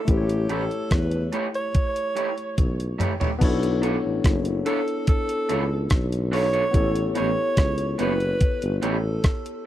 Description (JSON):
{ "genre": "lovers rock reggae", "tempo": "72 BPM", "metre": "4/4", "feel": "straight", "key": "B minor", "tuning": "A4 = 440 Hz", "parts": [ { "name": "breathy alto saxophone", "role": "melody", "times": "0.0-9.7 s", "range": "G4 to C#5", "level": "-28 LUFS", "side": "right 2 dB", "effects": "tape echo" }, { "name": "overdriven tine electric piano", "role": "accompaniment", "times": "0.0-9.7 s", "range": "A3 to C#5", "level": "-29 LUFS", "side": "left 5 dB", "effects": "slapback echo" }, { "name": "warm tuba", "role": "bass", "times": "0.1-9.2 s", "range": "F#1 to E2", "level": "-25 LUFS", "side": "equal", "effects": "none" }, { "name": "gated 80s digital drum machine", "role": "drums", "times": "0.1-9.6 s", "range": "crash cymbal, hi-hat, kick drum, rim click, toms", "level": "-22 LUFS", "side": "equal", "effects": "gated reverb" }, { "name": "electric guitar through a small old amp", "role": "stabs", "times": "0.5-9.0 s", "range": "A3 to C#5", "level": "-28 LUFS", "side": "right 3 dB", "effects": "none" } ], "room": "little or no reverb", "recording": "dry, close 1970s-style studio recording", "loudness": "-21 LUFS", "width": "side -12 dB against mid", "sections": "0.0-3.4 A section; 3.4-9.7 B section", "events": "drum fill 2.6-3.4", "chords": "0.1 A7; 3.4 Bm11; 6.7 A9" }